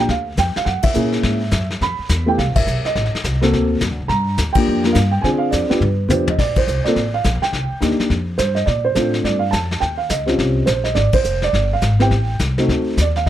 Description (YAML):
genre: jazz piano trio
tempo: 210 BPM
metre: 4/4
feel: swing 62% on 8ths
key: unclear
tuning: A4 = 441 Hz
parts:
  - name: dark upright piano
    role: melody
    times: 0.0-13.3 s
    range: G3 to B5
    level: -18 LUFS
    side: right 2 dB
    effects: none
  - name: upright bass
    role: bass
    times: 0.0-13.3 s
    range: F1 to D3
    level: -20 LUFS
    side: equal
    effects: none
  - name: vintage brush drum kit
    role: drums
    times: 0.1-13.3 s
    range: brushed snare drum, crash cymbal, hi-hat, kick drum, ride cymbal, snare drum, toms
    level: -22 LUFS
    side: left 2 dB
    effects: none
room: light reverb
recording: none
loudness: -15 LUFS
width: side -12 dB against mid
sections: 0.0-6.4 A section; 6.4-13.3 B section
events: band accent 0.8, 2.5, 4.5, 6.5, 11.1; drum fill 5.8-6.4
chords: 0.0 G7(no3); 0.7 F#9; 1.8 Fmaj7#11; 3.0 Adim; 3.5 D7b13; 4.1 Gm7; 5.2 Dm7b5; 5.8 G7; 6.4 Bbmaj9; 7.5 Cm7; 8.1 Fsus2; 8.7 Bbmaj9; 9.8 Eb13; 11.0 Abmaj7; 12.1 Am7; 12.7 D7b9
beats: 0.09 0.38 | 0.66 0.95 1.23 1.52 | 1.81 2.09 2.38 2.66 | 2.95 3.24 3.52 3.81 | 4.09 4.38 4.67 4.95 | 5.24 5.53 5.81 6.10 | 6.38 6.67 6.96 7.24 | 7.53 7.82 8.10 8.39 | 8.67 8.96 9.25 9.53 | 9.82 10.11 10.39 10.68 | 10.96 11.25 11.54 11.82 | 12.11 12.39 12.68 12.97 | 13.25